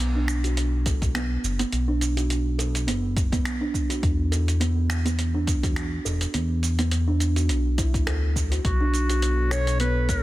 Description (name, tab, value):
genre	organic downtempo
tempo	104 BPM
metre	4/4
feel	swing 55% on 16ths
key	B minor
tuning	A4 = 439 Hz
part	smooth gliding synth bass	bass	0.0-10.2 s	E1 to E2	-24 LUFS	equal	sidechain pumping
part	dusty soul sampler-style drum kit	drums	0.0-10.2 s	cabasa, finger snaps, hi-hat	-31 LUFS	right 2 dB	overdrive, soft clipping on snare
part	kalimba	arpeggios	0.2-10.0 s	B3 to A4	-28 LUFS	right 2 dB	tape echo
part	electronic kick drum	drums	0.9-10.2 s	none	-26 LUFS	equal	overdrive
part	warbly tape-like pad	sustained chords	9.2-10.2 s	B2 to C#5	-32 LUFS	right 1 dB	chorus, built-in reverb, sidechain pumping
part	warm clarinet	melody	8.7-10.2 s	F#4 to C#5	-27 LUFS	left 1 dB	tape echo
room	light reverb, digital ambience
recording	dense, heavily limited modern master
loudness	-22 LUFS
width	side -16 dB against mid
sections	0.0-10.2 A section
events	none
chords	0.0 Bm; 4.0 E5; 8.6 Bm7